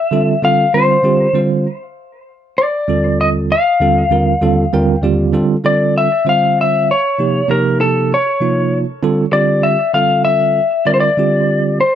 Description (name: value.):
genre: jazz.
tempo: 65 BPM (dotted quarters).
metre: 6/8.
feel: straight.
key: F major.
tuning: A4 = 442 Hz.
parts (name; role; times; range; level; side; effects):
lightly driven lead guitar; melody; 0.0-11.9 s; A4 to F5; -14 LUFS; left 3 dB; none.
bell-like tine electric piano; accompaniment; 0.1-11.8 s; Eb2 to G5; -15 LUFS; right 3 dB; fast stereo tremolo.
room: moderate studio ambience, RT60 0.5 s.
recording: dark, warm production.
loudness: -12 LUFS.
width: side -10 dB against mid.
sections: 0.0-5.3 A section; 5.3-11.9 B section.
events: tine electric piano fill 4.4-5.3.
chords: 0.0 Fmaj9; 1.7 Ebmaj9; 5.3 Fadd9; 7.2 Eb9; 9.0 Dm11; 10.9 C9sus4.